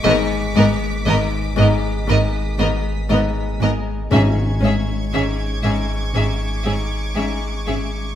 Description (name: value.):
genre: cinematic, suspense film score.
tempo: 59 BPM.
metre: 4/4.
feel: straight.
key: unclear.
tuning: A4 = 440 Hz.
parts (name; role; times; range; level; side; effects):
warm studio violin section; melody; 0.0-7.7 s; D#5 to E5; -25 LUFS; equal; none.
rich studio viola section; accompaniment; 0.0-7.8 s; B3 to C#4; -27 LUFS; equal; none.
Celtic harp; riff; 0.0-8.2 s; G#2 to G#3; -24 LUFS; left 8 dB; none.
rich studio cello section; bass; 0.0-7.8 s; G#2; -23 LUFS; right 2 dB; none.
clear studio violin section; texture; 0.0-8.2 s; C#6 to B6; -30 LUFS; right 1 dB; none.
rich studio violin section; second line; 0.1-7.7 s; G#4 to A#4; -29 LUFS; left 1 dB; none.
clear studio double bass section; bass; 0.1-7.7 s; G#1; -25 LUFS; right 3 dB; none.
warm sub bass; drone; 0.1-8.1 s; G#1; -25 LUFS; equal; none.
timpani; percussion; 4.1-5.6 s; G#2; -21 LUFS; equal; none.
room: moderate recital hall reverb, RT60 1.7 s.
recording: none.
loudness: -17 LUFS.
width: side -10 dB against mid.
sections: 0.0-8.2 A section.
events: none.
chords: 0.0 G#m; 4.1 C#5/G#.